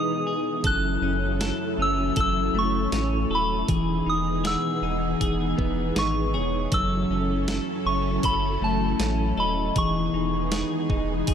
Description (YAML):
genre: dream pop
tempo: 79 BPM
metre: 4/4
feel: straight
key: F# dorian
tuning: A4 = 439 Hz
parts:
  - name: soft synth bell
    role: melody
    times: 0.0-11.3 s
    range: A5 to F#6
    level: -28 LUFS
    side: equal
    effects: chorus, ping-pong delay
  - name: string machine, cellos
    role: sustained chords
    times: 0.0-11.3 s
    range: E3 to A4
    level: -29 LUFS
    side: right 1 dB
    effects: ensemble chorus
  - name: clean electric guitar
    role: arpeggios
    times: 0.0-11.3 s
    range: F#2 to A4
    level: -28 LUFS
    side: left 4 dB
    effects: analog chorus, ping-pong delay
  - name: warm sub bass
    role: bass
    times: 0.6-11.3 s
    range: D#1 to A1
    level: -29 LUFS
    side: right 1 dB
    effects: none
  - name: clean 12-bit digital drum machine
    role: drums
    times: 0.6-11.3 s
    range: hi-hat, kick drum, snare drum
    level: -27 LUFS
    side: right 1 dB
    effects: none
  - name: vibraphone with hard mallets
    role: texture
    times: 4.4-10.1 s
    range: C#5 to F#5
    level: -41 LUFS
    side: right 2 dB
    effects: ping-pong delay
room: light reverb, digital ambience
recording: none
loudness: -22 LUFS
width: side -8 dB against mid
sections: 0.0-11.3 A section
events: none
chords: 0.0 C#m9/E (rootless); 0.6 F#m7; 3.7 C#m9/E; 6.7 F#m7; 9.8 C#m9/E